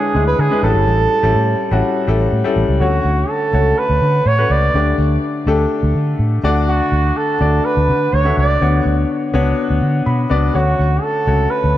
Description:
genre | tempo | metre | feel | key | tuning
1980s-style pop | 124 BPM | 4/4 | straight | unclear | A4 = 440 Hz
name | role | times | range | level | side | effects
warm flugelhorn | melody | 0.0-11.8 s | F#4 to D5 | -18 LUFS | right 3 dB | tape echo
warm concert grand piano | accompaniment | 0.0-11.8 s | A2 to B5 | -19 LUFS | left 3 dB | none
vintage muted fingered electric bass | bass | 0.1-11.7 s | G1 to D3 | -16 LUFS | equal | none
room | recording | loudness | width
moderate plate reverb, RT60 2.6 s | dark, warm production | -13 LUFS | side -13 dB against mid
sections
0.0-2.8 A section; 2.8-11.8 B section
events
grand piano fill 9.8-10.6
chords
0.0 E7/D; 0.6 A7; 2.8 F#m; 4.7 Gsus2/D; 6.4 D; 8.6 Bmadd9; 10.6 F#m

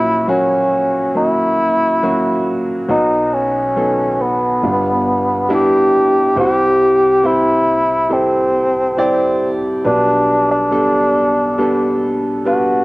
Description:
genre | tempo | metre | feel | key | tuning
pop | 69 BPM | 4/4 | straight | unclear | A4 = 436 Hz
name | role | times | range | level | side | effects
mellow bassoon | melody | 0.0-12.8 s | B3 to G4 | -14 LUFS | equal | cassette tape
warm upright piano | accompaniment | 0.0-12.8 s | G1 to D5 | -17 LUFS | equal | cassette tape
room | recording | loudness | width
moderate spring reverb, RT60 2.0 s, small room ambience | home recording on cassette | -13 LUFS | side -22 dB against mid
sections
0.0-6.4 A section; 6.4-12.8 A section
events
none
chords
0.0 F#/A#; 2.9 B; 4.6 G7; 6.4 C; 9.9 G/B

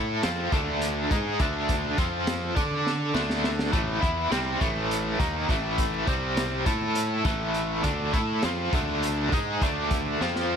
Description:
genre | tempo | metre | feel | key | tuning
psychedelic rock | 205 BPM (eighths) | 7/8 | straight | unclear | A4 = 438 Hz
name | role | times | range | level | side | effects
biting overdriven guitar | riff | 0.0-10.6 s | A2 to D5 | -26 LUFS | equal | tremolo
fuzz fingered electric bass | bass | 0.0-10.6 s | A1 to D3 | -32 LUFS | equal | overdrive
congas | percussion | 0.1-10.5 s | none | -42 LUFS | left 4 dB | none
crunchy breakbeat drum kit | drums | 0.2-10.5 s | hi-hat, kick drum, snare drum | -29 LUFS | equal | none
room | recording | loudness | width
light reverb, studio ambience | none | -24 LUFS | side -7 dB against mid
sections
0.0-10.6 A section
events
drum fill 2.9-3.7, 10.2-10.6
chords
0.0 D5; 2.0 F5; 2.6 D5; 3.7 A5; 6.1 C5; 6.7 A5; 7.8 D5

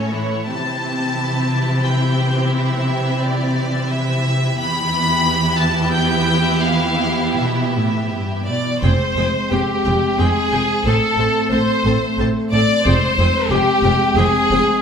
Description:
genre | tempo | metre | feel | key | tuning
cinematic, emotional film score for orchestra | 76-93 BPM | 3/4 | rubato | unclear | A4 = 440 Hz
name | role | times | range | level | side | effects
rich studio violin section | melody | 0.0-14.6 s | C#5 to B5 | -24 LUFS | left 1 dB | none
rich studio violin section | second line | 0.0-14.8 s | C#4 to D5 | -21 LUFS | equal | none
dark studio viola section | accompaniment | 0.0-14.6 s | E3 to A4 | -25 LUFS | right 1 dB | none
warm studio cello section | bass | 0.0-14.6 s | E2 to C3 | -21 LUFS | right 1 dB | none
clear clarinet | second line | 8.5-14.8 s | G4 to D5 | -22 LUFS | left 2 dB | none
dark French horn section | sustained chords | 8.8-14.8 s | Ab3 to C4 | -22 LUFS | left 3 dB | none
rich studio double bass section | bass | 8.8-14.6 s | F1 to A1 | -21 LUFS | right 1 dB | none
room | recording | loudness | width
wet stone room reverb, RT60 1.5 s | minimal, uncompressed stereo recording | -15 LUFS | side -7 dB against mid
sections
0.0-8.8 A section; 8.8-14.8 B section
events
none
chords
0.5 C; 4.6 Em; 8.8 Fmadd9; 10.9 Am; 12.9 Fmadd9

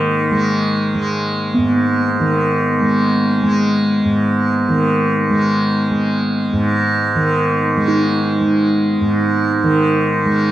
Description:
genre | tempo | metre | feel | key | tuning
world meditative, free-time meditation music | free time | none | none | G# minor | A4 = 440 Hz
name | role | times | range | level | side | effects
tanpura | drone | 0.0-10.5 s | G#2 to G#3 | -15 LUFS | equal | none
bronze singing bowl | texture | 0.0-10.5 s | A#3 to D#4 | -19 LUFS | right 1 dB | shimmer reverb
room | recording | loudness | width
wet spring reverb, RT60 2.6 s | nothing above 10.5 kHz | -14 LUFS | side -13 dB against mid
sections
0.0-10.5 A section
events
none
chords
none

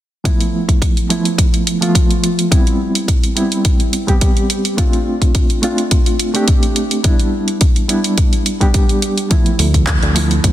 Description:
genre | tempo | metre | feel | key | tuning
nu-disco, nu disco | 106 BPM | 4/4 | swing 54% on 16ths | unclear | A4 = 440 Hz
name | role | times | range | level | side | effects
bright reed electric piano | accompaniment | 0.2-10.5 s | F3 to G4 | -17 LUFS | right 1 dB | fast tremolo, ping-pong delay
electronic kick drum | drums | 0.3-10.5 s | none | -14 LUFS | equal | small room ambience
pop drum kit | drums | 0.3-10.5 s | handclaps, hi-hat | -21 LUFS | right 1 dB | small room ambience
chorused synth bass | bass | 9.6-10.5 s | D2 | -15 LUFS | equal | none
room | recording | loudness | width
light reverb | dense, heavily limited modern master | -12 LUFS | side -13 dB against mid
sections
0.3-10.5 A section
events
none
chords
0.3 Fmaj7#11; 2.5 Cmaj7/G; 4.8 G7sus4; 7.0 G6; 9.3 Dm69

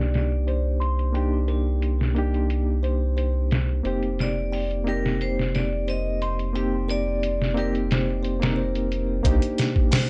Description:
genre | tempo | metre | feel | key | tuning
trip hop | 89 BPM | 4/4 | straight | C minor | A4 = 441 Hz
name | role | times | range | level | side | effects
vibraphone with hard mallets | melody | 0.0-10.1 s | Bb4 to Eb5 | -35 LUFS | equal | vintage 12-bit sampler grit, dub echo
reed electric piano | accompaniment | 0.0-10.1 s | Bb3 to Bb4 | -30 LUFS | equal | tremolo
soft dub sub bass | bass | 0.0-9.4 s | F1 to C2 | -27 LUFS | equal | tube saturation
trip hop sampler-style drum kit | drums | 0.1-10.1 s | hi-hat, kick drum, snare drum | -27 LUFS | equal | low-pass filter on hats, studio reverb, low-pass filter on snare, low-pass filter on kick
music box | arpeggios | 0.5-10.1 s | Bb4 to C6 | -37 LUFS | equal | low-pass filter, tape echo
room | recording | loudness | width
little or no reverb | nothing above 10.6 kHz | -24 LUFS | mono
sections
0.0-9.2 A section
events
none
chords
0.0 Cm9; 3.8 F9sus4; 9.2 Cm9

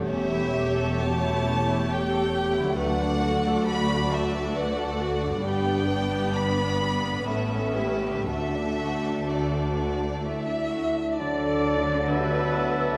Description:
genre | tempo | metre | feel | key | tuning
classical, slow romantic movement for symphony orchestra | 59-70 BPM | 3/4 | rubato | D major | A4 = 438 Hz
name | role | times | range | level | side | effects
rich chamber violin section | second line | 0.0-13.0 s | G3 to E5 | -35 LUFS | equal | none
warm chamber viola section | accompaniment | 0.0-13.0 s | A3 to E5 | -33 LUFS | equal | none
mellow French horn section | sustained chords | 0.0-13.0 s | A3 to B4 | -33 LUFS | equal | none
concert harp | arpeggios | 0.0-13.0 s | E2 to A5 | -37 LUFS | equal | none
warm chamber violin section | melody | 0.1-13.0 s | E4 to B5 | -34 LUFS | equal | none
dark symphonic double bass section | bass | 0.1-12.9 s | E1 to D2 | -35 LUFS | equal | none
warm chamber cello section | bass | 0.1-12.9 s | D2 to D3 | -34 LUFS | equal | none
bright large flute ensemble | second line | 10.2-13.0 s | B4 to E5 | -35 LUFS | equal | none
clear clarinet | second line | 11.2-13.0 s | D5 | -37 LUFS | equal | none
warm oboe | second line | 11.2-13.0 s | A5 | -35 LUFS | equal | none
dark bassoon | accompaniment | 11.2-13.0 s | F#3 | -36 LUFS | equal | none
room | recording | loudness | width
wet concert hall reverb, RT60 1.8 s | none | -26 LUFS | mono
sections
0.0-11.2 A section; 11.2-13.0 B section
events
none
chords
0.0 A7/E; 2.8 D; 5.4 G; 7.3 A9; 8.3 D

